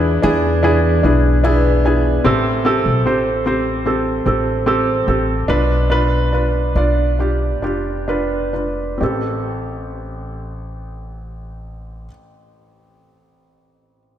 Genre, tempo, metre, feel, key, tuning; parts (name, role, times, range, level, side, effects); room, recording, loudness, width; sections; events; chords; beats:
pop ballad; 64-75 BPM; 4/4; straight; A minor; A4 = 440 Hz
felt-muted upright piano; accompaniment; 0.0-14.2 s; A1 to G#5; -17 LUFS; right 1 dB
picked steel-string acoustic guitar; arpeggios; 0.0-2.3 s; E2 to B4; -23 LUFS; left 7 dB
upright bass; bass; 0.0-12.1 s; F1 to E2; -20 LUFS; equal
moderate lush hall reverb, RT60 2.5 s; dreamy mix soaked in reverb; -14 LUFS; side -10 dB against mid
0.0-2.3 A section; 2.3-9.0 B section; 9.0-12.7 C section
felt piano fill 1.0-2.3; slowing down 2.3-9.0
0.0 E7; 2.3 Am7; 5.5 Bdim; 9.0 Am7
0.64 1.45 | 2.25 3.06 3.86 4.67 | 5.49 6.33 7.19 8.08 | 9.01 9.94 10.86 11.79